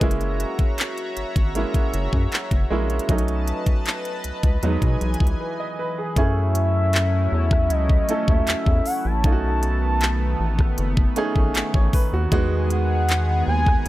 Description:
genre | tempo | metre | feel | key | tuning
contemporary R&B | 78 BPM | 4/4 | straight | F# dorian | A4 = 441 Hz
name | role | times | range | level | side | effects
clear grand piano | accompaniment | 0.0-13.9 s | F#3 to D#5 | -27 LUFS | right 3 dB | none
chorused pulse-width pad | sustained chords | 0.0-13.9 s | D#3 to A#5 | -29 LUFS | equal | none
rubbery square bass | bass | 0.0-13.9 s | F#1 to B2 | -22 LUFS | equal | none
trap drum kit | drums | 0.0-13.9 s | handclaps, hi-hat, kick drum, rim click | -20 LUFS | equal | none
gliding portamento lead | melody | 6.2-13.9 s | D#5 to A5 | -26 LUFS | equal | chorus, digital delay
room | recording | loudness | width
little or no reverb | none | -19 LUFS | side -16 dB against mid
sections
0.0-6.2 A section; 6.2-13.9 B section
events
break 5.4-6.2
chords
0.0 F#7; 3.1 B7; 4.6 Emaj7; 6.2 F#m7; 9.2 B7; 12.3 Emaj7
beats
| 0.01 0.78 1.55 2.32 | 3.09 3.86 4.63 5.39 | 6.17 6.93 7.70 8.47 | 9.24 10.01 10.78 11.55 | 12.32 13.09 13.86

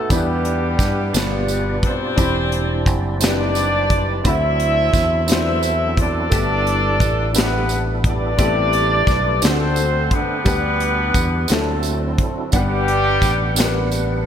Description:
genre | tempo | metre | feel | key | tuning
slow gospel | 58 BPM (dotted quarters) | 6/8 | straight | G major | A4 = 440 Hz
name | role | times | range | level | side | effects
mellow horn section | melody | 0.0-13.9 s | G3 to E5 | -20 LUFS | left 1 dB | digital delay
warm concert grand piano | accompaniment | 0.0-14.3 s | G2 to B5 | -24 LUFS | left 1 dB | analog chorus
percussive tonewheel organ | sustained chords | 0.0-14.3 s | B2 to F#5 | -28 LUFS | right 4 dB | slow rotary speaker, chorus vibrato
fingered electric bass | bass | 0.1-14.3 s | E1 to G2 | -22 LUFS | equal | none
modern studio drum kit | drums | 0.1-14.1 s | hi-hat, kick drum, snare drum | -20 LUFS | equal | gated reverb
tambourine | percussion | 0.1-14.2 s | none | -28 LUFS | right 10 dB | none
room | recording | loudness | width
light reverb, small room ambience | bright 1980s-style digital production | -16 LUFS | side -9 dB against mid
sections
0.0-14.3 A section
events
none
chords
0.1 Em7; 1.1 G7; 2.2 Cmaj9/E; 4.2 D13; 6.3 G69; 8.4 Am9; 9.4 D7; 10.5 G/D; 11.5 D9; 12.5 Gmaj7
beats
| 0.10 1.14 | 2.17 3.21 | 4.25 5.28 | 6.32 7.35 | 8.39 9.42 | 10.46 11.50 | 12.54 13.57

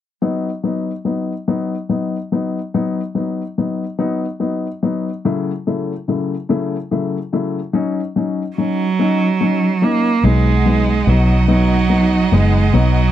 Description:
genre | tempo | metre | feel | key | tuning
pop | 48 BPM (dotted quarters) | 6/8 | straight | B major | A4 = 445 Hz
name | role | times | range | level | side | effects
dark upright piano | accompaniment | 0.2-13.0 s | C#3 to E4 | -19 LUFS | left 4 dB | none
clear cello | melody | 8.6-13.1 s | F#3 to A#3 | -16 LUFS | right 5 dB | none
rich studio string section | sustained chords | 10.2-13.1 s | D#4 to F#5 | -24 LUFS | right 2 dB | none
vintage muted fingered electric bass | bass | 10.2-13.1 s | F#1 to B1 | -15 LUFS | equal | none
room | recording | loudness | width
little or no reverb | dry, close 1970s-style studio recording | -15 LUFS | side -11 dB against mid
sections
0.2-10.2 A section; 10.2-13.1 B section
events
none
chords
0.2 B; 5.2 F#m7/C#; 7.7 D#m7; 10.2 B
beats
| 0.23 1.48 | 2.73 3.98 | 5.23 6.48 | 7.73 8.98 | 10.23 11.48 | 12.73

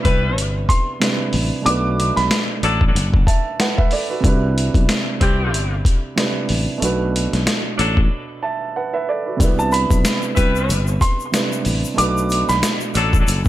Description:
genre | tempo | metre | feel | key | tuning
hip hop, boom-bap hip-hop | 93 BPM | 4/4 | swing 58% on 16ths | B phrygian | A4 = 443 Hz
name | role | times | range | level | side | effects
dark baby grand piano | accompaniment | 0.0-13.5 s | B2 to A5 | -23 LUFS | right 4 dB | cassette tape, high-pass filter, low-pass filter
bright saxophone section | stabs | 0.0-13.2 s | E3 to B4 | -22 LUFS | left 2 dB | high-pass filter, low-pass filter, digital delay
sustaining fretless electric bass | bass | 0.1-13.5 s | F#1 to C2 | -20 LUFS | left 1 dB | none
boom bap sampler-style drum kit | drums | 0.1-13.5 s | hi-hat, kick drum, snare drum | -18 LUFS | equal | none
dark upright piano | melody | 0.7-2.5, 9.6-12.8 s | A5 to D6 | -21 LUFS | right 2 dB | high-pass filter, low-pass filter, digital delay
egg shaker | percussion | 9.4-13.5 s | none | -33 LUFS | left 10 dB | none
room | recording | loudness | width
studio reverb | none | -16 LUFS | side -14 dB against mid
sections
0.0-13.5 A section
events
break 8.1-9.4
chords
0.0 Cmaj7; 1.7 Bm7; 4.2 Cmaj7; 6.8 Bm7; 9.4 Cmaj7; 12.0 Bm7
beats
0.37 1.01 | 1.66 2.30 2.95 3.59 | 4.24 4.88 5.53 6.17 | 6.82 7.46 8.11 8.75 | 9.40 10.04 10.69 11.34 | 11.98 12.62 13.27

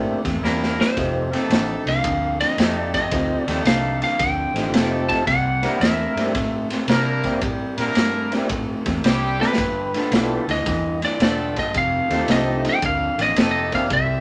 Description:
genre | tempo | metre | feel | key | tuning
electric blues shuffle | 111 BPM | 4/4 | swing 67% on 8ths | unclear | A4 = 439 Hz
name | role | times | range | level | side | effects
tonewheel organ | accompaniment | 0.0-13.9 s | A3 to A4 | -29 LUFS | equal | slow rotary speaker, overdrive
electric guitar through a small old amp | riff | 0.0-14.2 s | F2 to A3 | -29 LUFS | equal | none
vintage muted fingered electric bass | bass | 0.0-14.2 s | E1 to C3 | -30 LUFS | equal | none
raw garage drum kit | drums | 0.2-14.1 s | kick drum, ride cymbal, snare drum | -26 LUFS | equal | none
brilliant horn section | stabs | 0.4-13.9 s | G3 to Bb4 | -29 LUFS | equal | none
lightly driven lead guitar | melody | 0.8-14.2 s | B4 to A5 | -25 LUFS | equal | none
room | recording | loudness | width
moderate studio reverb, RT60 0.7 s | none | -21 LUFS | mono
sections
0.0-14.2 A section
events
drum fill 0.4-1.0, 9.3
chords
0.0 C9; 1.0 F9; 5.3 C9; 9.6 G9; 11.7 F9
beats
0.43 | 0.97 1.50 2.04 2.58 | 3.12 3.66 4.20 4.73 | 5.27 5.81 6.35 6.89 | 7.42 7.96 8.50 9.04 | 9.58 10.12 10.66 11.20 | 11.74 12.28 12.82 13.37 | 13.91

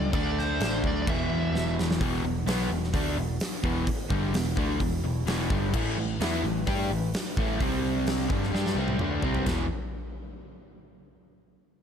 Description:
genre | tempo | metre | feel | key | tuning
hard rock | 129 BPM | 4/4 | straight | E minor | A4 = 441 Hz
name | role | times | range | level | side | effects
nasal lead guitar with a parked wah | melody | 0.0-1.7 s | C5 to E5 | -33 LUFS | right 3 dB | overdrive
hollow soft pad | sustained chords | 0.0-9.7 s | E3 to E5 | -41 LUFS | left 2 dB | none
crunchy overdriven guitar | riff | 0.0-9.7 s | E2 to G4 | -34 LUFS | equal | spring reverb
overdriven semi-hollow guitar | riff | 0.0-9.7 s | E2 to G4 | -32 LUFS | left 11 dB | none
sludgy distorted guitar | riff | 0.0-9.7 s | E2 to G4 | -33 LUFS | right 12 dB | overdrive
picked electric bass | bass | 0.0-9.7 s | E1 to G2 | -31 LUFS | equal | none
huge arena drum kit | drums | 0.1-9.6 s | crash cymbal, hi-hat, kick drum, snare drum, toms | -30 LUFS | equal | none
room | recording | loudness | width
light reverb, studio reverb | none | -25 LUFS | side -8 dB against mid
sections
0.0-2.0 A section; 2.0-9.5 B section; 9.5-11.3 C section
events
drum fill 1.5-2.0, 8.5-9.5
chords
0.1 D5; 1.1 E5; 2.0 Em; 5.7 A5; 7.6 C5; 8.3 A5; 9.5 E5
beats
| 0.13 0.60 1.06 1.53 | 2.00 2.47 2.94 3.40 | 3.87 4.34 4.80 5.27 | 5.74 6.20 6.67 7.13 | 7.60 8.06 8.53 9.00 | 9.46

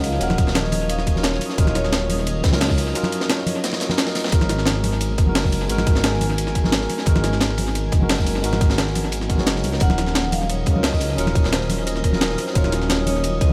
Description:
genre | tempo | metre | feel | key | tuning
liquid drum and bass | 175 BPM | 4/4 | straight | G# minor | A4 = 440 Hz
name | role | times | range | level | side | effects
vibraphone with medium mallets | melody | 0.0-2.2, 9.8-13.5 s | A#4 to F#5 | -31 LUFS | equal | analog delay
bright tine electric piano | accompaniment | 0.0-13.5 s | E#3 to C#5 | -29 LUFS | equal | analog delay
glassy FM pad | sustained chords | 0.0-13.5 s | C#4 to D#6 | -35 LUFS | equal | ensemble chorus, built-in reverb
dark detuned saw bass | bass | 0.0-13.5 s | D#1 to C#2 | -26 LUFS | equal | none
crunchy breakbeat drum kit | drums | 0.0-13.5 s | hi-hat, ride cymbal, snare drum | -31 LUFS | equal | high-pass filter on cymbals, high-pass filter on hats, high-pass filter on snare, high-pass filter on room, tape echo
jungle sampler-style drum kit | drums | 0.0-13.5 s | hi-hat, snare drum | -27 LUFS | equal | overdrive, tape echo
congas | percussion | 0.3-13.5 s | none | -30 LUFS | equal | tape echo
electronic kick drum | drums | 0.4-13.5 s | none | -21 LUFS | equal | none
room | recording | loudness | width
light reverb | echo-heavy mix | -20 LUFS | mono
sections
0.0-13.5 A section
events
none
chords
0.0 D#m9; 4.3 G#m9; 9.8 D#m9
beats
| 0.21 0.55 0.90 1.24 | 1.58 1.92 2.27 2.61 | 2.95 3.30 3.64 3.98 | 4.32 4.67 5.01 5.35 | 5.70 6.04 6.38 6.72 | 7.07 7.41 7.75 8.10 | 8.44 8.78 9.12 9.47 | 9.81 10.15 10.50 10.84 | 11.18 11.52 11.87 12.21 | 12.55 12.90 13.24

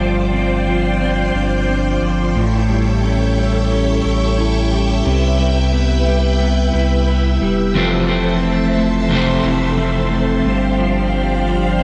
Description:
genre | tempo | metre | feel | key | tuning
dream pop | 89 BPM | 4/4 | straight | F lydian | A4 = 441 Hz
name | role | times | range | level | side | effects
phased string machine | sustained chords | 0.0-11.8 s | D4 to A5 | -23 LUFS | equal | ensemble chorus, phaser
electric guitar at the edge of break-up | arpeggios | 0.0-11.8 s | G2 to E4 | -21 LUFS | equal | lush chorus, digital delay
saturated sub bass | bass | 0.0-11.8 s | E1 to C2 | -21 LUFS | equal | none
electric guitar at the edge of break-up | accompaniment | 7.7-11.0 s | F2 to C4 | -22 LUFS | equal | harmonic tremolo, lush chorus
room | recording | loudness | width
light reverb | none | -16 LUFS | mono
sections
0.0-11.8 A section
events
none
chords
0.0 G7sus4; 2.4 A7; 5.1 Cmaj7; 7.8 Fmaj7; 10.4 G7sus4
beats
0.34 1.01 1.69 | 2.36 3.03 3.71 4.38 | 5.05 5.73 6.40 7.08 | 7.75 8.43 9.10 9.77 | 10.45 11.12 11.80

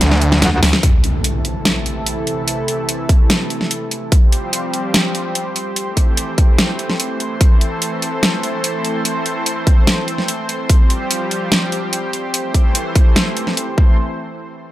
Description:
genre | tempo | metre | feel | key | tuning
heavy wobble dubstep | 146 BPM | 4/4 | half-time | A minor | A4 = 440 Hz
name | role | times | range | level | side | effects
bright concert grand piano | melody | 0.0-0.8 s | D3 to D4 | -25 LUFS | right 1 dB | none
snarling distorted saw bass | bass | 0.0-0.7 s | D2 | -14 LUFS | equal | distortion, overdrive
dubstep drum kit | drums | 0.0-13.7 s | hi-hat, snare drum | -17 LUFS | equal | none
metallic wobble bass | bass | 0.4-0.6 s | D2 | -15 LUFS | equal | chorus, overdrive
lush unison pad | sustained chords | 0.8-14.0 s | C3 to C5 | -21 LUFS | equal | chorus, sidechain pumping
electronic kick drum | drums | 0.8-13.9 s | none | -12 LUFS | equal | overdrive
impact | sound effects | 0.8-2.5 s | none | -22 LUFS | equal | none
room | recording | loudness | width
light reverb | none | -14 LUFS | side -14 dB against mid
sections
0.8-14.0 A section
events
drum fill 0.0-0.8; impact 0.8-2.5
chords
0.0 N.C.; 0.8 Am; 4.1 Fsus2; 5.8 C6; 7.4 Am; 10.7 Fsus2; 12.3 C6; 13.8 Am; 14.0 N.C.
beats
0.01 0.42 | 0.83 1.24 1.65 2.06 | 2.48 2.89 3.30 3.71 | 4.12 4.53 4.94 5.35 | 5.76 6.17 6.59 7.00 | 7.41 7.82 8.23 8.64 | 9.05 9.46 9.87 10.28 | 10.70 11.11 11.52 11.93 | 12.34 12.75 13.16 13.57

